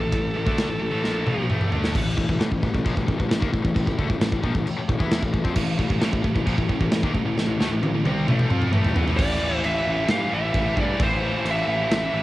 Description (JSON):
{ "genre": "heavy metal", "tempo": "132 BPM", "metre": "4/4", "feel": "straight", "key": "A minor", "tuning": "A4 = 441 Hz", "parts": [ { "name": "high-gain lead guitar", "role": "melody", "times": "0.0-1.4, 9.2-12.2 s", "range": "A4 to F5", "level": "-26 LUFS", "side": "right 1 dB", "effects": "distortion, cassette tape" }, { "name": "heavy high-gain guitar", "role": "riff", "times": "0.0-12.2 s", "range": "A2 to F4", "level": "-28 LUFS", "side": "left 5 dB", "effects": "distortion, cassette tape" }, { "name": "heavy high-gain guitar", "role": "riff", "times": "0.0-1.9, 5.6-12.2 s", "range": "A2 to F4", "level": "-31 LUFS", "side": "right 8 dB", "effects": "distortion, cassette tape" }, { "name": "fuzz picked electric bass", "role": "bass", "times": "0.0-12.2 s", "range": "A1 to G2", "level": "-27 LUFS", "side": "equal", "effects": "overdrive" }, { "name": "modern studio drum kit", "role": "drums", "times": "0.1-12.0 s", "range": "china cymbal, crash cymbal, kick drum, ride cymbal, snare drum, toms", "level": "-24 LUFS", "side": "equal", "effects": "cassette tape" } ], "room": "little or no reverb", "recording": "home recording on cassette", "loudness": "-20 LUFS", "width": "side -16 dB against mid", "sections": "0.0-1.9 A section; 1.9-9.2 B section; 9.2-12.2 C section", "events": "drum fill 1.0-1.9, 7.4-9.2; half time 9.2-12.2", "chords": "0.0 A5; 1.9 Am; 9.2 A5" }